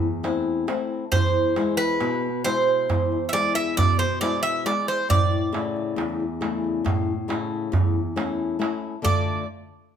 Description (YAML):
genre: greek folk, Greek bouzouki band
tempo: 136 BPM (eighths)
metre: 9/8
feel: straight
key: unclear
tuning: A4 = 439 Hz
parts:
  - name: flamenco guitar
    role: accompaniment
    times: 0.0-9.4 s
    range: E2 to A4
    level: -26 LUFS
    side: left 4 dB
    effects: none
  - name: darbuka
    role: percussion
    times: 0.0-9.4 s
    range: none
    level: -25 LUFS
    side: right 2 dB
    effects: none
  - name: Greek bouzouki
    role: melody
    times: 1.1-9.4 s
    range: B4 to E5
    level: -23 LUFS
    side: right 3 dB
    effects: none
room: moderate large studio reverb, RT60 1.1 s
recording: band playing live in one room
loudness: -21 LUFS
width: side -8 dB against mid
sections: 0.0-9.0 A section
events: none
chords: 0.0 Am; 1.1 E; 5.1 A; 9.0 Dm